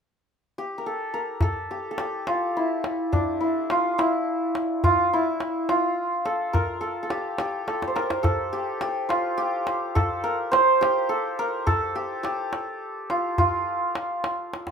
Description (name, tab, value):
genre	Persian modal ensemble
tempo	70 BPM (dotted quarters)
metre	6/8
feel	straight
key	F dastgah mahur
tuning	A4 = 439 Hz
part	santur	melody	0.6-14.7 s	D4 to C5	-23 LUFS	equal	none
part	tombak	percussion	1.4-14.7 s	none	-26 LUFS	equal	none
room	moderate studio reverb, RT60 0.5 s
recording	minimal, uncompressed stereo recording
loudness	-22 LUFS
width	side -6 dB against mid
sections	0.0-1.4 A section; 1.4-14.7 B section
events	drum fill 7.7-8.3, 14.5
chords	none